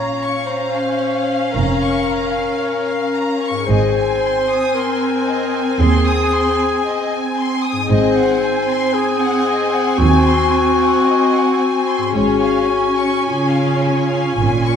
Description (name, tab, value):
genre	cinematic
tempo	56 BPM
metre	4/4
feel	rubato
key	unclear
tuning	A4 = 440 Hz
part	warm symphonic violin section	melody	0.0-14.8 s	F5 to Ab5	-24 LUFS	left 5 dB	none
part	mellow clarinet	second line	0.0-14.8 s	F4 to Db5	-19 LUFS	left 2 dB	none
part	warm studio violin section	second line	0.0-14.8 s	Db5 to Eb6	-24 LUFS	left 3 dB	none
part	warm studio viola section	accompaniment	0.0-14.8 s	C4 to Db4	-20 LUFS	right 1 dB	none
part	concert harp	arpeggios	0.0-14.8 s	Ab2 to Db5	-25 LUFS	left 12 dB	none
part	warm studio cello section	bass	0.0-14.8 s	Eb2 to Db3	-21 LUFS	right 3 dB	none
part	warm studio double bass section	bass	0.0-14.8 s	F1 to Eb2	-21 LUFS	right 3 dB	none
room	moderate scoring stage reverb, RT60 2.0 s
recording	none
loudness	-14 LUFS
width	side -7 dB against mid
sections	0.0-14.8 A section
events	none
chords	0.0 Bbm; 3.7 Ab; 7.9 Ab7; 12.2 Db/Ab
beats	0.48 1.54 2.61 | 3.68 4.75 5.81 6.85 | 7.90 8.94 9.99 11.06 | 12.15 13.27 14.38